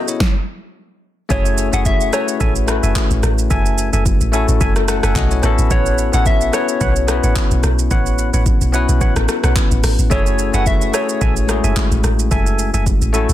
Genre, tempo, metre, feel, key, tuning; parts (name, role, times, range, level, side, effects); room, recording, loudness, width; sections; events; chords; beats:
amapiano; 109 BPM; 4/4; swing 55% on 16ths; F# minor; A4 = 440 Hz
bell-like tine electric piano; accompaniment; 0.0-13.3 s; G#3 to B5; -21 LUFS; left 7 dB
deep house drum kit; drums; 0.1-13.3 s; handclaps, hi-hat, kick drum, rim click, shaker, snare drum; -18 LUFS; equal; overdrive
soft struck synth lead; melody; 1.3-12.0 s; C#5 to F#5; -22 LUFS; left 1 dB; chorus, ping-pong delay
percussive organ stab; stabs; 1.3-13.3 s; A4 to G#5; -25 LUFS; right 3 dB; chorus, ping-pong delay
deep log drum bass; bass; 1.3-13.3 s; F#1 to B1; -17 LUFS; equal
digital ambience; dense, heavily limited modern master; -14 LUFS; side -13 dB against mid
0.0-1.3 A section; 1.3-13.3 B section
stop 0.2-1.3; drop 1.3-13.3; tine electric piano fill 4.6-5.7
0.0 A69; 1.3 F#m9; 5.4 A69; 10.1 F#m9
0.20 0.75 | 1.30 1.85 2.41 2.96 | 3.51 4.06 4.61 5.16 | 5.71 6.26 6.81 7.36 | 7.91 8.46 9.01 9.56 | 10.11 10.66 11.21 11.76 | 12.31 12.86